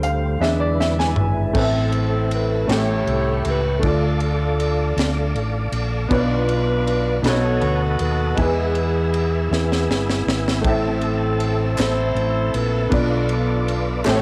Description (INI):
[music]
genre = slow gospel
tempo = 53 BPM (dotted quarters)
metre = 6/8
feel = straight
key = A harmonic minor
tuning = A4 = 437 Hz
[part]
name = clear baby grand piano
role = accompaniment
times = 0.0-14.2 s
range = A2 to G#5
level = -26 LUFS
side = equal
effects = cassette tape, plate reverb
[part]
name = tonewheel organ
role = sustained chords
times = 0.0-14.2 s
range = D3 to E6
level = -31 LUFS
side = equal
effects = slow rotary speaker, chorus vibrato, cassette tape, plate reverb
[part]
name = fingered electric bass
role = bass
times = 0.0-14.2 s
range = G1 to E2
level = -25 LUFS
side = equal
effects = none
[part]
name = crisp fusion drum kit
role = drums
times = 0.0-14.2 s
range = crash cymbal, hi-hat, kick drum, ride cymbal, snare drum, toms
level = -29 LUFS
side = equal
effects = cassette tape
[part]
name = warm saxophone section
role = melody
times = 1.6-14.2 s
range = B3 to C#5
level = -26 LUFS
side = equal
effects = cassette tape, plate reverb
[part]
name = group handclap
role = percussion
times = 11.8-14.2 s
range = none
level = -33 LUFS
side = equal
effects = none
[sound]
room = light reverb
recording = home recording on cassette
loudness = -20 LUFS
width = mono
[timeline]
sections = 0.0-1.6 A section; 1.6-14.2 B section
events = grand piano solo 0.0-1.6; drum fill 0.4-1.6, 9.5-10.7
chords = 0.4 E7; 1.6 Am; 2.7 A7; 3.8 Dm; 6.1 Bdim; 7.2 B7; 8.4 E; 10.7 Am; 12.9 Bdim